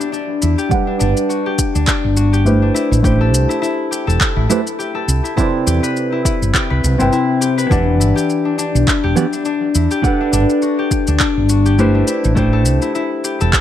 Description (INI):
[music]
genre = sunset chillout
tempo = 103 BPM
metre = 4/4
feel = swing 56% on 16ths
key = unclear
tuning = A4 = 440 Hz
[part]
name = concert harp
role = arpeggios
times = 0.0-13.6 s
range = D4 to B4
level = -19 LUFS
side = left 5 dB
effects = tape echo
[part]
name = electronic shaker and handclaps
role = drums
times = 0.0-13.6 s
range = none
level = -21 LUFS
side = equal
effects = overdrive
[part]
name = woody fretless electric bass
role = bass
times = 0.4-13.5 s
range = E1 to E2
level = -15 LUFS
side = right 1 dB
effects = ensemble chorus
[part]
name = nylon-string guitar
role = accompaniment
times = 0.7-13.6 s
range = C3 to G5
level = -19 LUFS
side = moving between left 3 dB and right 7 dB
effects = auto-pan, low-pass filter, tape echo
[part]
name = electronic kick drum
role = drums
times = 0.7-13.6 s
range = none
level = -18 LUFS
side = right 1 dB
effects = overdrive
[sound]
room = light reverb, small room ambience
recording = none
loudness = -13 LUFS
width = side -11 dB against mid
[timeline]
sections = 0.0-13.6 A section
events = filter sweep on nylon-string guitar 0.0-13.6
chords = 0.0 Em7; 0.7 Gmaj7; 2.8 Am7; 5.1 Cmaj7; 7.7 Em7; 10.0 Gmaj7; 12.1 Am7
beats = 0.13 | 0.71 1.30 1.88 2.46 | 3.04 3.63 4.21 4.79 | 5.37 5.96 6.54 7.12 | 7.70 8.29 8.87 9.45 | 10.03 10.62 11.20 11.78 | 12.36 12.95 13.53